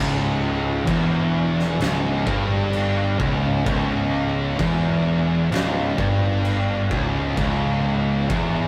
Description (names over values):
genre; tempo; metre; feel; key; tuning
stoner and doom metal; 65 BPM; 4/4; straight; C# minor; A4 = 441 Hz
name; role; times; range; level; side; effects
thick fuzz guitar; riff; 0.0-8.7 s; C#2 to G2; -28 LUFS; equal; distortion
thick fuzz guitar; riff; 0.0-8.7 s; C#2 to G2; -27 LUFS; equal; distortion
tight distorted guitar; riff; 0.0-8.7 s; C#2 to G2; -27 LUFS; equal; distortion
fuzz fingered electric bass; bass; 0.0-8.7 s; C#1 to G1; -31 LUFS; equal; overdrive
oversized low-tuned drum kit; drums; 0.9-8.5 s; crash cymbal, kick drum, snare drum; -29 LUFS; equal; none
room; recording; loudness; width
moderate small room reverb, RT60 0.5 s; rough rehearsal-room recording, warm saturation; -21 LUFS; mono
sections
0.0-8.7 A section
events
none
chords
0.0 C#m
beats
0.87 1.80 2.73 | 3.66 4.59 5.52 6.45 | 7.37 8.30